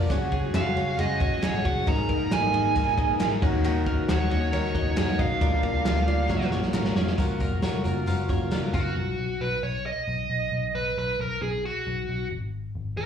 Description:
jangly indie pop; 136 BPM; 4/4; straight; A4 = 439 Hz
picked twelve-string acoustic guitar; accompaniment; 0.0-9.0 s; D3 to G#4; -32 LUFS; right 2 dB; slapback echo
soft electric-piano-like synth keys; accompaniment; 0.0-9.0 s; C#4 to D#5; -34 LUFS; equal; chorus, slapback echo
twelve-string electric guitar; arpeggios; 0.0-9.5 s; G#2 to D#5; -32 LUFS; left 8 dB; slapback echo
vintage muted picked electric bass; bass; 0.0-13.1 s; E#1 to F#2; -29 LUFS; equal
raw garage drum kit; drums; 0.1-8.8 s; crash cymbal, hi-hat, kick drum, ride cymbal, snare drum; -27 LUFS; equal
group handclap; percussion; 0.5-6.8 s; -42 LUFS; left 2 dB; slapback echo
dark smooth lead guitar; melody; 0.6-13.1 s; F#4 to A#5; -28 LUFS; right 3 dB; overdrive, slapback echo
little or no reverb; live gig heard through the venue's PA, club reverb, small room ambience; -23 LUFS; side -8 dB against mid
0.0-7.2 A section; 7.2-9.0 B section; 9.0-13.1 C section
drum fill 6.3-7.2
0.1 F#sus2; 1.9 G#sus2; 3.4 D#m7; 5.4 A#/D; 6.3 F#maj7; 9.0 B; 12.3 N.C.

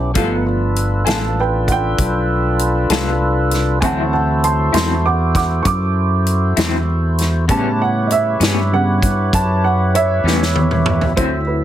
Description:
slow blues; 65 BPM (dotted quarters); 12/8; straight; A4 = 439 Hz
dark upright piano; accompaniment; 0.0-11.6 s; C#3 to D6; -20 LUFS; right 3 dB
tonewheel organ; sustained chords; 0.0-11.6 s; F#3 to F#5; -22 LUFS; equal; overdrive, slow rotary speaker
fingered electric bass; bass; 0.0-11.6 s; G1 to A2; -18 LUFS; equal
electric guitar through a small old amp; accompaniment; 0.1-11.4 s; A2 to A4; -22 LUFS; left 4 dB; tremolo
natural country drum kit; drums; 0.1-11.3 s; hi-hat, kick drum, snare drum, toms; -20 LUFS; equal
light reverb; heavily compressed radio sound, multiband compression; -14 LUFS; side -11 dB against mid
0.0-11.2 A section
upright piano solo 0.0-11.2; drum fill 10.2-11.2
0.2 G9; 3.8 D9; 7.5 A9

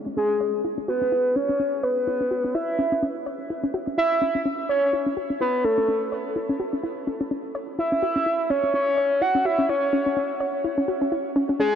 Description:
IDM; 126 BPM; 4/4; swing 56% on 16ths; C# minor; A4 = 444 Hz
soft round pluck; arpeggios; 0.1-11.7 s; C#4 to C#5; -27 LUFS; left 1 dB; chorus, tape echo
warbly nostalgic lead; melody; 0.2-11.8 s; G#4 to F#5; -23 LUFS; equal; chorus, vintage 12-bit sampler grit, digital delay
wet huge ambient reverb, RT60 6.6 s; dark, warm production; -21 LUFS; side -8 dB against mid
0.0-11.8 A section
0.0 C#m

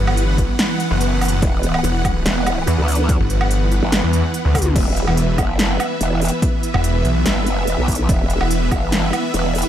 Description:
heavy wobble dubstep; 144 BPM; 4/4; half-time; E minor; A4 = 441 Hz
supersaw chords; sustained chords; 0.0-9.7 s; E3 to F#5; -21 LUFS; right 1 dB; ensemble chorus, sidechain pumping
snarling distorted saw bass; bass; 0.0-8.7 s; E1 to E2; -18 LUFS; equal; distortion, overdrive
big-room dance drum kit; drums; 0.1-9.7 s; crash cymbal, hi-hat, snare drum, toms, woodblock; -23 LUFS; equal; overdrive
electronic kick drum; drums; 0.4-8.8 s; -20 LUFS; equal; overdrive
growl bass; bass; 1.4-9.6 s; E1 to D2; -20 LUFS; equal; chorus, overdrive
moderate plate reverb, RT60 1.3 s; dreamy mix soaked in reverb; -15 LUFS; side -10 dB against mid
0.0-4.8 A section; 4.8-9.7 A section
drop 0.0-4.8, 4.8-9.7; drum fill 4.5
0.0 E5

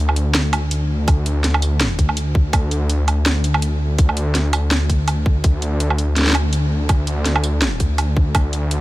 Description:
half-time drum and bass; 165 BPM; 4/4; swing 56% on 16ths, half-time; A4 = 440 Hz
dark detuned saw bass; bass; 0.0-8.8 s; D2; -18 LUFS; equal
drum and bass drum kit; drums; 0.1-8.8 s; hi-hat, snare drum, tambourine, woodblock; -22 LUFS; right 1 dB
electronic kick drum; drums; 1.1-8.4 s; -16 LUFS; equal
digital ambience; -16 LUFS; side -17 dB against mid
0.0-8.8 A section

